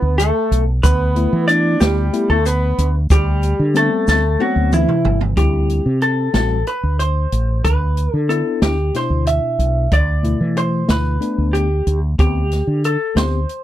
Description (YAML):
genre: progressive instrumental, band music in an uneven meter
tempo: 185 BPM (eighths)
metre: 7/8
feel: straight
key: unclear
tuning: A4 = 443 Hz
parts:
  - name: vintage hollow-body jazz guitar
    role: melody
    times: 0.0-13.6 s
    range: E4 to E5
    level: -20 LUFS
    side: left 1 dB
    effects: none
  - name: breathy alto saxophone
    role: second line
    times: 0.0-5.2 s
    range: E3 to D4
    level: -23 LUFS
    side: right 4 dB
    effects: none
  - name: mellow fretless electric bass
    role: bass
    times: 0.0-13.4 s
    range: G1 to E3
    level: -17 LUFS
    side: equal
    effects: none
  - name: open jazz drum kit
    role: drums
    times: 0.2-13.6 s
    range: hi-hat, kick drum, snare drum, toms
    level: -19 LUFS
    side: equal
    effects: none
  - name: tube shaker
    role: percussion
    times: 0.2-5.0 s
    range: none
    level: -34 LUFS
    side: left 11 dB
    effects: none
  - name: tine electric piano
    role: accompaniment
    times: 1.2-13.4 s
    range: B2 to G4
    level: -22 LUFS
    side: left 4 dB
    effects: medium stereo tremolo
room: little or no reverb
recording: dry, close 1970s-style studio recording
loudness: -14 LUFS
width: side -13 dB against mid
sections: 0.0-5.4 A section; 5.4-13.6 B section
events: drum fill 4.1-5.4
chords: 0.0 Gadd9 (rootless); 0.8 G69/D; 3.1 Am7/D; 5.4 D7sus4; 7.6 Bmadd11; 9.9 Dsus4; 12.2 Gadd11